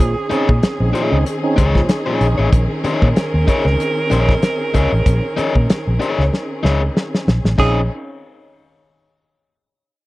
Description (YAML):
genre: funk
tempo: 95 BPM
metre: 4/4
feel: swing 56% on 16ths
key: Bb minor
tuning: A4 = 440 Hz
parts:
  - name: warm tenor saxophone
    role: second line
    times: 0.0-7.8 s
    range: Ab4 to Bb4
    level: -24 LUFS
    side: right 4 dB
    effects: none
  - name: warm studio string section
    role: sustained chords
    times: 0.0-7.9 s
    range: Eb3 to Ab4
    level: -25 LUFS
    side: equal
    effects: none
  - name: tonewheel organ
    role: stabs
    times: 0.0-2.4, 7.6-7.8 s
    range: Bb2 to Ab4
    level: -21 LUFS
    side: right 2 dB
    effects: slow rotary speaker
  - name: vintage muted fingered electric bass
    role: bass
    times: 0.0-7.9 s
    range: A1 to Bb2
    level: -17 LUFS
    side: equal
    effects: none
  - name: damped 70s drum kit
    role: drums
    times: 0.0-7.8 s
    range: hi-hat, kick drum, snare drum, splash cymbal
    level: -16 LUFS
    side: equal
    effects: none
  - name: crunchy overdriven guitar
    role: accompaniment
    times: 0.3-7.8 s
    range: Eb4 to Db5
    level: -22 LUFS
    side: left 4 dB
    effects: spring reverb
room: little or no reverb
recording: dry, close 1970s-style studio recording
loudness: -14 LUFS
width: side -18 dB against mid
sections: 0.0-7.6 A section; 7.6-10.1 B section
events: drum fill 6.3-7.6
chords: 0.0 Bbm11; 7.6 Bbm11 (rootless)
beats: | 0.00 0.63 1.26 1.89 | 2.52 3.15 3.79 4.42 | 5.05 5.68 6.32 6.95 | 7.58